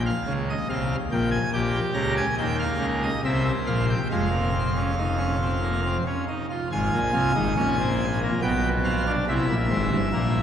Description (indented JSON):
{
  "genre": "classical, baroque-style 3-part fugue for pipe organ",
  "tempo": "70 BPM",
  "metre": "3/4",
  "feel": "straight",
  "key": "F minor",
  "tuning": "A4 = 440 Hz",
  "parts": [
    { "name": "pipe organ, full organ", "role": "solo", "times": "0.0-10.4 s", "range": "F1 to Bb5", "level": "-22 LUFS", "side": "equal", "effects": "none" }
  ],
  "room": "wet cathedral reverb, RT60 6.7 s",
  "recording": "recorded in a church or concert hall",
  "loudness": "-22 LUFS",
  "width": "side -9 dB against mid",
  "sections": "0.0-6.7 A section; 6.7-10.4 B section",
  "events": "none",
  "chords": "0.0 Eb7(no3); 0.7 Ab/C; 1.5 Gdim/Bb; 3.2 C; 4.1 Fm; 6.7 Fm/Ab; 8.4 G7/B; 9.3 C7"
}